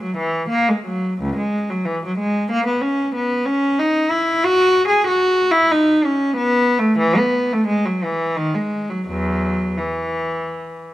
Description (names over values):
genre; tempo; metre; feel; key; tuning
classical, baroque-style suite movement for unaccompanied cello; 91 BPM; 3/4; uneven beats, rubato; E major from 3.1 s; A4 = 439 Hz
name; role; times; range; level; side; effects
rich cello; solo; 0.0-10.8 s; C#2 to G#4; -16 LUFS; equal; none
room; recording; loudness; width
moderate recital hall reverb, RT60 1.8 s; close, detailed microphones; -16 LUFS; side -15 dB against mid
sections
0.0-10.9 A section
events
none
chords
none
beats
0.50 | 1.18 1.85 2.50 | 3.15 3.79 4.44 | 5.09 5.73 6.38 | 7.03 7.70 8.37 | 9.07 9.78 10.47